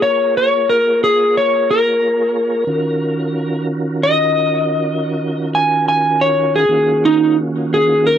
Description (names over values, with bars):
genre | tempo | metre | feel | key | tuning
blues | 60 BPM (dotted quarters) | 12/8 | straight | unclear | A4 = 441 Hz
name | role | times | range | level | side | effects
electric slide guitar | melody | 0.0-8.2 s | Eb4 to Ab5 | -14 LUFS | equal | none
tonewheel organ | sustained chords | 0.0-8.2 s | Eb3 to Db5 | -20 LUFS | right 2 dB | slow rotary speaker, chorus vibrato
room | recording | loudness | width
light reverb | dry, close 1970s-style studio recording | -13 LUFS | side -9 dB against mid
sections
0.0-8.2 A section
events
electric slide guitar solo 0.0-8.2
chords
0.0 Bbm7; 2.7 Ebm7